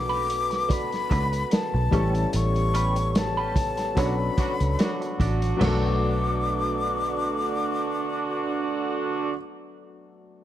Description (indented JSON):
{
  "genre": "lush 1970s-style soul",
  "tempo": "73 BPM",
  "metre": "4/4",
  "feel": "swing 54% on 16ths",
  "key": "B minor",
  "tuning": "A4 = 440 Hz",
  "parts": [
    { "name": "breathy jazz flute", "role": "melody", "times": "0.0-9.3 s", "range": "A5 to D6", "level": "-29 LUFS", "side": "left 5 dB", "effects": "slapback echo" },
    { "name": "clear baby grand piano", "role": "accompaniment", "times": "0.0-10.4 s", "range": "F#3 to A4", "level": "-32 LUFS", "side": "left 4 dB", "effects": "none" },
    { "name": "mellow French horn section", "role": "sustained chords", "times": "0.0-9.3 s", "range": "B2 to C#5", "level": "-34 LUFS", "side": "right 2 dB", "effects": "none" },
    { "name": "vintage muted fingered electric bass", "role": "bass", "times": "0.0-9.3 s", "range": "A1 to C#2", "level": "-26 LUFS", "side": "equal", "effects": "none" },
    { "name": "electric guitar at the edge of break-up", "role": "riff", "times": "0.1-9.4 s", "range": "A3 to D5", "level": "-34 LUFS", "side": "right 6 dB", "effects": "wah" },
    { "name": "vintage drum kit", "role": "drums", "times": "0.3-5.8 s", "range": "crash cymbal, hi-hat, kick drum, snare drum, toms", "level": "-27 LUFS", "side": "equal", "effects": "none" },
    { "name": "warm horn section", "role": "stabs", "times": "4.0-9.3 s", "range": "D3 to F#4", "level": "-29 LUFS", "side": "right 4 dB", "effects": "none" }
  ],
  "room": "light reverb, small room ambience",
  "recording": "dark, warm production",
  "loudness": "-22 LUFS",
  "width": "side -12 dB against mid",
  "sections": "0.0-5.6 A section; 5.6-8.9 B section",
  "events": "band accent 2.3-5.6",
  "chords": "0.0 Bm7; 1.9 A9; 4.0 Bm9"
}